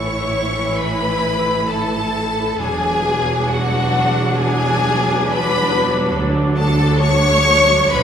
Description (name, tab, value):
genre	classical, slow romantic movement for string orchestra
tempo	67 BPM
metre	4/4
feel	rubato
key	unclear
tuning	A4 = 441 Hz
part	rich studio violin section	melody	0.0-8.0 s	F#5 to C#6	-20 LUFS	left 2 dB	none
part	warm studio violin section	second line	0.0-8.0 s	F#4 to C#5	-20 LUFS	left 1 dB	none
part	clear studio viola section	accompaniment	0.0-8.0 s	E3 to E4	-22 LUFS	equal	none
part	clear studio cello section	bass	0.0-8.0 s	D2 to B2	-25 LUFS	right 2 dB	none
part	clear studio double bass section	bass	0.0-8.0 s	E1 to D2	-21 LUFS	right 2 dB	none
room	wet recital hall reverb, RT60 1.6 s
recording	recorded in a church or concert hall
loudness	-14 LUFS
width	side -8 dB against mid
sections	0.0-8.0 A section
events	none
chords	0.0 A; 2.6 E9; 6.1 D